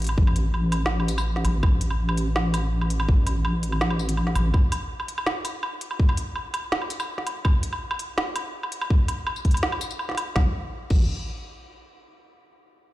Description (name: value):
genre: half-time drum and bass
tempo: 165 BPM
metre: 4/4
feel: half-time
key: unclear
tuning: A4 = 442 Hz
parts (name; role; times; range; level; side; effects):
- deep soft wobble bass; bass; 0.0-4.5, 10.4-11.1 s; A1; -23 LUFS; equal; chorus, tube saturation
- organic electronic drum kit; drums; 0.0-11.0 s; crash cymbal, hi-hat, snare drum, tambourine, woodblock; -28 LUFS; equal; none
- electronic kick drum; drums; 0.2-11.0 s; none; -19 LUFS; equal; none
room: little or no reverb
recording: played on a big sound system in a bare room, stone room reverb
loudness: -22 LUFS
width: side -16 dB against mid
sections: 0.0-10.4 A section; 10.4-11.8 B section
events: none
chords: none